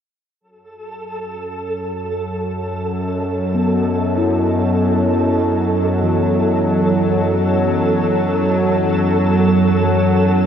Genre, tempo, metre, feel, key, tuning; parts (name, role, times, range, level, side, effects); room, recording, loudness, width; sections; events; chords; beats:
dark ambient drone; 48 BPM; 4/4; straight; A4 = 440 Hz
dark analog pad; sustained chords; 3.3-10.5 s; F#4 to D#5; -32 LUFS; equal
bowed-like drone; drone; 1.3-10.5 s; F#2 to F#3; -17 LUFS; right 1 dB; built-in reverb
flickering grainy texture; texture; 0.7-10.5 s; A4; -22 LUFS; right 1 dB; built-in reverb
quartz singing bowl; arpeggios; 3.5-10.5 s; E3 to E4; -20 LUFS; left 2 dB; diffuse ambient delay
wet cathedral reverb, RT60 5.2 s; in a vast, echoing space; -15 LUFS; side -8 dB against mid
0.4-10.5 A section
0.4 F#m
| 0.41 1.67 2.92 4.17 | 5.42 6.66 7.88 9.11 | 10.35